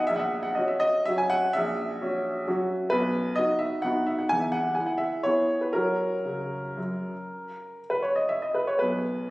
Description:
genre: classical, piano waltz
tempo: 113-138 BPM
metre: 3/4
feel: rubato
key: unclear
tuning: A4 = 440 Hz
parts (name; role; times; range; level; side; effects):
- warm upright piano; solo; 0.0-9.3 s; A#1 to G#5; -24 LUFS; equal; none
room: moderate scoring stage reverb, RT60 1.9 s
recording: recorded on a phone in the room, studio reverb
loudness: -24 LUFS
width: side -19 dB against mid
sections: 0.0-9.3 A section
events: none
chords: 0.1 F#7/A#; 2.9 B; 4.3 E; 5.7 F#

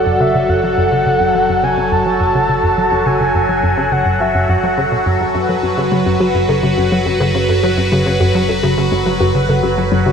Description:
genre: ambient, sequencer-driven space music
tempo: 105 BPM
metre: 4/4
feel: straight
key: F# minor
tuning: A4 = 441 Hz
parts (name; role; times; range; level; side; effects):
- breathy flute-like synth lead; melody; 0.0-5.1 s; E5 to A5; -19 LUFS; equal; chorus, ping-pong delay
- phased analog pad; sustained chords; 0.0-10.1 s; F#3 to B4; -16 LUFS; equal; phaser, chorus
- analog drone; bass; 0.0-10.1 s; F#1; -25 LUFS; equal; chorus
- tight sequencer bass; riff; 0.1-10.1 s; F#2 to F#3; -18 LUFS; equal; lush chorus, ping-pong delay
- warbly dusty pluck; arpeggios; 5.5-10.1 s; F#3 to A4; -21 LUFS; left 3 dB; chorus, auto-pan, vintage 12-bit sampler grit, ping-pong delay
room: wet cathedral reverb, RT60 7.2 s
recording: dreamy mix soaked in reverb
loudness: -12 LUFS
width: side -7 dB against mid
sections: 0.0-10.1 A section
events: fade-in on synth drone 0.0-10.1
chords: 0.0 F#m

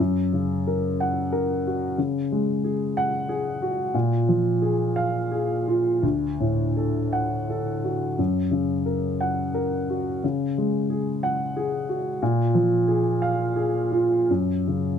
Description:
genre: neoclassical minimalist piano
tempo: 80-94 BPM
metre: 3/4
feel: rubato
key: F# major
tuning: A4 = 440 Hz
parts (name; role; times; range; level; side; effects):
- warm upright piano; solo; 0.0-15.0 s; D2 to F#5; -22 LUFS; equal; none
room: light reverb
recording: close, detailed microphones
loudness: -22 LUFS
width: side -8 dB against mid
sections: 0.0-15.0 A section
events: none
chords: 0.0 F#; 2.0 C#sus4; 3.9 A#5; 6.0 D; 8.2 F#; 10.2 C#sus4; 12.2 A#5; 14.3 F#5

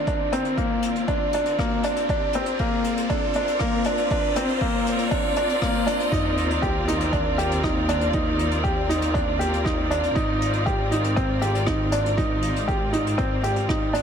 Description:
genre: piano and strings electronica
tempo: 119 BPM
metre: 4/4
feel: straight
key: Eb major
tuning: A4 = 440 Hz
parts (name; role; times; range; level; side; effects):
- warm studio string section; sustained chords; 0.0-14.0 s; Eb3 to D5; -28 LUFS; left 1 dB; sidechain pumping, low-pass filter
- felt-muted upright piano; riff; 0.0-14.0 s; Bb3 to G4; -24 LUFS; equal; ping-pong delay
- riser and sub drop; sound effects; 0.0-8.1 s; none; -32 LUFS; equal; none
- electronic kick drum; drums; 0.1-13.8 s; none; -28 LUFS; equal; none
- vintage brush drum kit; drums; 0.1-14.0 s; hi-hat, rim click; -36 LUFS; left 4 dB; none
- warm symphonic double bass section; bass; 6.1-14.0 s; Ab1 to Eb2; -27 LUFS; equal; sidechain pumping
room: moderate recital hall reverb, RT60 1.4 s, small room ambience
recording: none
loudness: -20 LUFS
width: side -7 dB against mid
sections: 0.0-6.1 A section; 6.1-14.0 B section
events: build-up 0.0-6.1; riser 0.0-6.1; drop 6.1-14.0; impact 6.1-8.1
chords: 0.0 Eb5; 2.1 Bb; 6.1 Ebmaj7; 10.2 Abmaj7

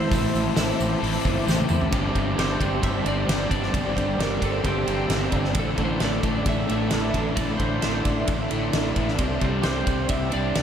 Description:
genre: rock, shoegaze and dream pop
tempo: 132 BPM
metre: 4/4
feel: straight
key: unclear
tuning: A4 = 440 Hz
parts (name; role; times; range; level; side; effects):
- electric guitar at the edge of break-up; melody; 0.0-10.6 s; G4 to E5; -31 LUFS; equal; wide subtle chorus, analog delay
- ethereal airy pad; sustained chords; 0.0-10.6 s; A4 to E6; -32 LUFS; right 1 dB; ensemble chorus, built-in reverb
- twelve-string electric guitar; arpeggios; 0.0-10.6 s; E3 to A4; -33 LUFS; right 5 dB; lush chorus, analog delay
- crunchy overdriven guitar; riff; 0.0-10.6 s; G2 to E4; -28 LUFS; left 6 dB; lush chorus
- overdriven semi-hollow guitar; riff; 0.0-10.6 s; G2 to E4; -30 LUFS; right 6 dB; reverse reverb
- fuzz fingered electric bass; bass; 0.1-10.6 s; G1 to E2; -28 LUFS; equal; overdrive
- loose indie drum kit; drums; 0.1-10.6 s; hi-hat, kick drum, ride cymbal, snare drum, toms; -27 LUFS; equal; none
- tambourine; percussion; 0.1-1.8 s; none; -41 LUFS; right 9 dB; none
room: wet lush hall reverb, RT60 1.8 s, studio ambience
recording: dreamy mix soaked in reverb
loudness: -21 LUFS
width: side -8 dB against mid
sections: 0.0-1.9 A section; 1.9-10.6 B section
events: drum fill 1.5-1.9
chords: 0.0 Am; 1.9 Gsus4; 5.6 Asus4; 9.2 Csus2

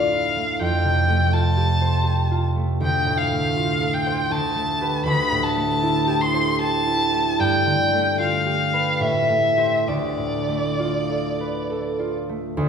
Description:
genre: classical, impressionist duo for violin and harp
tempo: 65-84 BPM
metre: 3/4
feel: rubato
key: D dorian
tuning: A4 = 441 Hz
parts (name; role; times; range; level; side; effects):
- warm violin; melody; 0.0-12.1 s; D5 to C6; -22 LUFS; left 1 dB; none
- concert harp; accompaniment; 0.0-12.7 s; D2 to D5; -21 LUFS; right 1 dB; none
room: wet recital hall reverb, RT60 1.4 s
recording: heard from further back in the room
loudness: -19 LUFS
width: side -7 dB against mid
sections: 0.0-12.6 A section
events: none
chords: 0.0 Dmadd9; 0.6 Fadd9; 2.8 Dm7; 4.3 G9/D; 5.1 Am7/D; 7.4 G13; 9.0 Am7; 9.9 Dm6

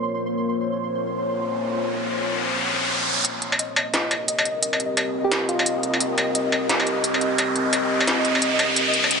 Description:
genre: half-time drum and bass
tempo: 174 BPM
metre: 4/4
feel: swing 60% on 16ths, half-time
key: C phrygian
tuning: A4 = 440 Hz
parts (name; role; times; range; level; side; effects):
- deep dark ambient pad; sustained chords; 0.0-9.2 s; Bb3 to Eb5; -26 LUFS; left 1 dB; chorus, built-in reverb
- pulsing gated texture; texture; 0.0-9.2 s; Eb5 to C6; -29 LUFS; equal; chorus, built-in reverb
- riser; sound effects; 1.2-9.2 s; none; -25 LUFS; equal; none
- industrial drum kit; drums; 3.2-9.2 s; hi-hat, snare drum, struck metal; -22 LUFS; equal; high-pass filter on hats, low-pass filter on hats, high-pass filter on perc, low-pass filter on perc, high-pass filter on snare, low-pass filter on snare
- soft struck synth lead; melody; 5.2-6.0 s; F4 to G4; -28 LUFS; right 1 dB; chorus, ping-pong delay
room: wet echo chamber reverb, RT60 2.3 s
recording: nothing above 10.6 kHz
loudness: -20 LUFS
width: side -5 dB against mid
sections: 0.0-3.2 A section; 3.2-9.2 B section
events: riser 1.2-3.2, 3.2-9.2; build-up 3.2-9.2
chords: 0.0 Bbmadd9; 3.2 Cm7

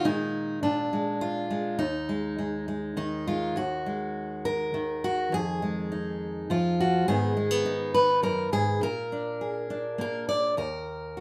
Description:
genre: folk, solo fingerstyle acoustic guitar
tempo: 103 BPM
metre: 3/4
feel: straight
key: Eb minor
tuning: A4 = 439 Hz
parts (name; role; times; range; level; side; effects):
- fingerpicked steel-string acoustic guitar; solo; 0.0-11.2 s; Eb2 to D5; -28 LUFS; equal; none
room: light reverb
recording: none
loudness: -28 LUFS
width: mono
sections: 0.0-3.6 A section; 3.6-11.2 A section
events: none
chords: 0.0 Bb7sus4; 0.6 Bb7; 1.8 Ebsus4; 5.3 Fm7; 7.1 Abm; 8.8 Bb7; 10.6 Eb5

